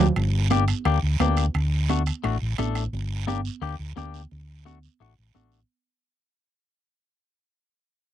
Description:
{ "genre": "latin, cumbia", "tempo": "174 BPM", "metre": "4/4", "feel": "straight", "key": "G harmonic minor", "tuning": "A4 = 440 Hz", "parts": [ { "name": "clean electric guitar", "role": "accompaniment", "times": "0.0-5.6 s", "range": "A3 to A4", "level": "-26 LUFS", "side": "left 14 dB", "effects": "none" }, { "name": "fingered electric bass", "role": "bass", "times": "0.0-5.6 s", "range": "G1 to D2", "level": "-24 LUFS", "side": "equal", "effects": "none" }, { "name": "congas", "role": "percussion", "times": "0.2-5.5 s", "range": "none", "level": "-29 LUFS", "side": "right 9 dB", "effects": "none" }, { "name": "guiro", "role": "percussion", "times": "0.2-5.7 s", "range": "none", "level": "-37 LUFS", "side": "right 16 dB", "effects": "none" }, { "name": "timbales", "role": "percussion", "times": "0.2-2.9 s", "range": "none", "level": "-30 LUFS", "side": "right 6 dB", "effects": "none" } ], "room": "little or no reverb", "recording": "dry, close 1970s-style studio recording", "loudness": "-22 LUFS", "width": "side -11 dB against mid", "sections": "0.2-5.7 A section", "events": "drum fill 0.0; fade-out 0.2-5.7", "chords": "0.2 Gm; 1.5 D; 2.9 Gm; 4.3 D", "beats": "| 0.17 0.51 0.86 1.20 | 1.55 1.89 2.24 2.58 | 2.93 3.27 3.62 3.96 | 4.31 4.66 5.00 5.35" }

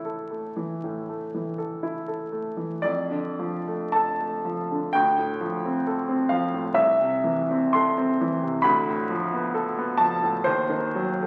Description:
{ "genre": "classical, romantic nocturne for solo piano", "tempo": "51-69 BPM", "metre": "4/4", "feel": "rubato", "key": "unclear", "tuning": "A4 = 440 Hz", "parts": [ { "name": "clear grand piano", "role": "solo", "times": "0.0-11.3 s", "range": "C2 to C6", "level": "-25 LUFS", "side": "equal", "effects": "none" } ], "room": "wet recital hall reverb, RT60 1.4 s", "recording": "very old 78 rpm record, vinyl crackle", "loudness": "-25 LUFS", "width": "mono", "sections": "0.0-11.3 A section", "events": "none", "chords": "0.0 A; 2.8 Dm/F; 5.0 Dm7; 6.8 Am/C; 8.7 Bm7b5/D; 10.5 D#m6", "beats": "0.83 1.82 | 2.84 3.96 4.95 5.88 | 6.78 7.79 8.67 9.56 | 10.46" }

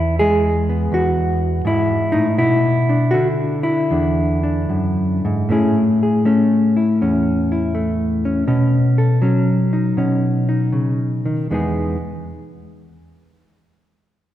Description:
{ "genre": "solo jazz", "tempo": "80 BPM", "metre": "4/4", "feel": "swing 67% on 8ths, rubato", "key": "E major", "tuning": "A4 = 440 Hz", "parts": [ { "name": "hollow-body jazz guitar", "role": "solo", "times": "0.0-12.0 s", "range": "E2 to A4", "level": "-15 LUFS", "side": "equal", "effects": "none" } ], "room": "wet concert hall reverb, RT60 2.1 s", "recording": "recorded in a church or concert hall", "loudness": "-15 LUFS", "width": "side -12 dB against mid", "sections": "0.0-5.5 A section; 5.5-11.5 B section; 11.5-14.3 C section", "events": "none", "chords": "0.0 E; 2.4 Bm; 3.9 E7; 5.5 Amaj7; 8.5 B9; 11.5 Emaj7", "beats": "0.19 0.92 1.64 | 2.38 3.13 3.90 4.70 | 5.49 6.26 7.01 7.75 | 8.47 9.21 9.96 10.71 | 11.48" }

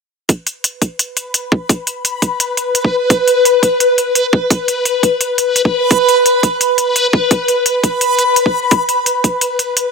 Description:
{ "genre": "half-time drum and bass", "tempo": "171 BPM", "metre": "4/4", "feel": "swing 55% on 16ths, half-time", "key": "unclear", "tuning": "A4 = 440 Hz", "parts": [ { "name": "electronic hi-hat", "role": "drums", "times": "0.3-9.8 s", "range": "none", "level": "-16 LUFS", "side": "equal", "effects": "none" }, { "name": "electronic kick drum", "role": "drums", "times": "0.3-9.3 s", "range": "none", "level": "-14 LUFS", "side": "right 1 dB", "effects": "high-pass filter on kick" }, { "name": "backwards swelling texture", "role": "texture", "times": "1.5-9.9 s", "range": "B4", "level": "-13 LUFS", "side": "left 1 dB", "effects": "built-in reverb" } ], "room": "moderate huge ambient reverb, RT60 7.5 s", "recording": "none", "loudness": "-12 LUFS", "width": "side -4 dB against mid", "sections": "0.3-9.9 A section", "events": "none", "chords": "none", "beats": "| 0.29 0.65 1.00 1.35 | 1.70 2.05 2.40 2.75 | 3.10 3.45 3.80 4.15 | 4.50 4.86 5.21 5.56 | 5.91 6.26 6.61 6.96 | 7.31 7.66 8.01 8.36 | 8.71 9.07 9.42 9.77" }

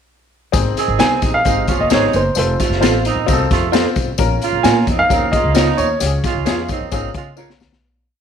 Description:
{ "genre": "uptempo 1960s-style soul", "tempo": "132 BPM", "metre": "4/4", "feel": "straight", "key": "Db major", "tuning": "A4 = 440 Hz", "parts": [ { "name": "clear upright piano", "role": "accompaniment", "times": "0.5-7.7 s", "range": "C4 to C5", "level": "-23 LUFS", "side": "left 11 dB", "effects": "none" }, { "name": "upright bass", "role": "bass", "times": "0.5-7.8 s", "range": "F1 to Db3", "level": "-21 LUFS", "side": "equal", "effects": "none" }, { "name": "raw garage drum kit", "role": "drums", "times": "0.5-7.8 s", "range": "hi-hat, kick drum, snare drum", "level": "-19 LUFS", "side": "left 3 dB", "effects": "none" }, { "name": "tambourine", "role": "percussion", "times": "0.5-7.7 s", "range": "none", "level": "-30 LUFS", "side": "left 12 dB", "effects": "none" }, { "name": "mellow horn section", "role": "second line", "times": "0.8-7.3 s", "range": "Bb2 to Ab4", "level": "-22 LUFS", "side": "right 12 dB", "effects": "none" }, { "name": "dark baby grand piano", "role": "melody", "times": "1.0-7.3 s", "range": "C5 to Ab5", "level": "-18 LUFS", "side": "right 1 dB", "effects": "none" }, { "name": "electric guitar through a small old amp", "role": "stabs", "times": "1.0-7.5 s", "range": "Eb4 to Db5", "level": "-22 LUFS", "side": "right 12 dB", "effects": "warbly pitch drift" } ], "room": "light reverb, small room ambience", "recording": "1960s-style stereo with parts hard left and right, faint mains hum", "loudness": "-14 LUFS", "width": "side -8 dB against mid", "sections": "0.5-7.8 A section", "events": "fade-out 6.0-7.8; drum fill 7.4-7.8", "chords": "0.5 Ab; 2.4 F; 4.2 Bbm; 6.0 Db", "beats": "| 0.53 0.99 1.45 1.91 | 2.36 2.82 3.28 3.73 | 4.19 4.64 5.10 5.55 | 6.01 6.46 6.92 7.37" }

